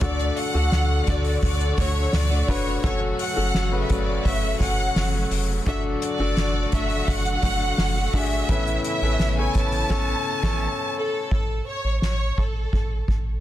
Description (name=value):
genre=piano-driven pop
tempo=85 BPM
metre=4/4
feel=straight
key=A major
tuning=A4 = 437 Hz
part: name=warm studio violin section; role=melody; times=0.0-13.1 s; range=A4 to A5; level=-27 LUFS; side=equal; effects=none
part: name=clear concert grand piano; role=accompaniment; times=0.0-11.3 s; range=A2 to C#5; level=-29 LUFS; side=left 5 dB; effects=none
part: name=warm studio string section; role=sustained chords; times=0.0-11.3 s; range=C#3 to F#4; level=-34 LUFS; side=left 1 dB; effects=none
part: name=picked steel-string acoustic guitar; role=riff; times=0.0-10.7 s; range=D3 to F#4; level=-33 LUFS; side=right 4 dB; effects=none
part: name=round analog bass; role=bass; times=0.0-13.4 s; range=F1 to D2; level=-25 LUFS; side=equal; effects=none
part: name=soft-mallet drum kit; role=drums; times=0.0-13.2 s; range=crash cymbal, hi-hat, kick drum, snare drum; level=-26 LUFS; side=equal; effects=none
room=small room ambience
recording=dense, heavily limited modern master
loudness=-20 LUFS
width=side -13 dB against mid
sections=0.0-11.3 A section; 11.3-13.4 B section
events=band accent 9.9-11.3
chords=0.0 D; 2.8 F#m; 5.7 D/F#; 8.5 Aadd9; 11.3 A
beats=| 0.02 0.72 1.43 2.14 | 2.84 3.55 4.25 4.96 | 5.67 6.37 7.08 7.78 | 8.49 9.20 9.90 10.61 | 11.32 12.03 12.73